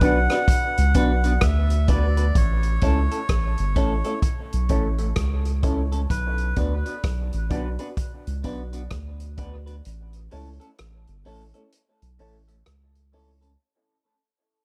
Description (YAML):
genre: dub reggae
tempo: 64 BPM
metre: 4/4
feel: swing 62% on 16ths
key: unclear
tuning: A4 = 439 Hz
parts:
  - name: melodica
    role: melody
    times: 0.0-6.6 s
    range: B4 to F#5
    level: -31 LUFS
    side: equal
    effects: dub echo
  - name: semi-hollow electric guitar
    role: accompaniment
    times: 0.0-13.5 s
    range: A3 to B4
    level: -32 LUFS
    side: equal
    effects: phaser, dub echo
  - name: dark upright piano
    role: stabs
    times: 0.0-13.3 s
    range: C#4 to D5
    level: -34 LUFS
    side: equal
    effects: dub echo
  - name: soft dub sub bass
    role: bass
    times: 0.0-13.6 s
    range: G1 to D2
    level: -26 LUFS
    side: equal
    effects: none
  - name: vintage drum kit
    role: drums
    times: 0.0-13.6 s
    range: hi-hat, kick drum, rim click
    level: -27 LUFS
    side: equal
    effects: none
room: light reverb, small room ambience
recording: dark, warm production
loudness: -23 LUFS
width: mono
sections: 0.0-13.6 A section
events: fade-out 0.0-13.6; break 6.1-13.6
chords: 0.0 Bm; 2.4 A; 6.1 Bm; 9.9 A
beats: 0.48 1.42 | 2.35 3.29 4.23 5.16 | 6.10 7.04 7.98 8.91 | 9.85 10.79 11.73 12.66